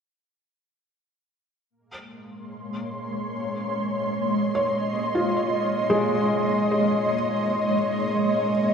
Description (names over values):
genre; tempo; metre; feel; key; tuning
ambient; free time; none; none; Bb minor; A4 = 442 Hz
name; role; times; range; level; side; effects
ethereal airy pad; sustained chords; 2.4-8.7 s; Ab3 to C6; -23 LUFS; equal; ensemble chorus, built-in reverb, tremolo
felt-muted upright piano; arpeggios; 4.5-8.7 s; Ab3 to Db5; -26 LUFS; left 1 dB; ping-pong delay
room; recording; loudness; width
wet scoring stage reverb, RT60 2.1 s; lossy compression artefacts; -22 LUFS; side -6 dB against mid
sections
1.7-8.7 A section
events
none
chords
1.7 Bbm11